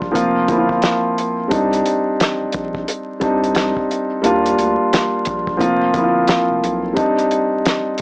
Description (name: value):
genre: hip hop, boom-bap hip-hop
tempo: 88 BPM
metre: 4/4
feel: swing 61% on 16ths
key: C minor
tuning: A4 = 441 Hz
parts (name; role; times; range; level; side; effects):
- dark grand piano; accompaniment; 0.0-8.0 s; F3 to F4; -16 LUFS; equal; cassette tape, high-pass filter, low-pass filter
- saturated sub bass; bass; 0.0-6.9 s; F1 to Eb2; -28 LUFS; equal; none
- cloth-damped thuddy drum kit; drums; 0.0-8.0 s; hi-hat, kick drum, snare drum; -20 LUFS; equal; none
room: light reverb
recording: vinyl crackle, small speaker sound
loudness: -15 LUFS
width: side -28 dB against mid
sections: 0.0-8.0 A section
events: none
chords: 0.2 Fsus4; 1.5 Cmadd9; 4.2 Ebmaj7; 5.6 Fsus4; 7.0 Cmadd9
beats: 0.15 0.83 | 1.51 2.20 2.88 3.56 | 4.24 4.92 5.61 6.29 | 6.97 7.65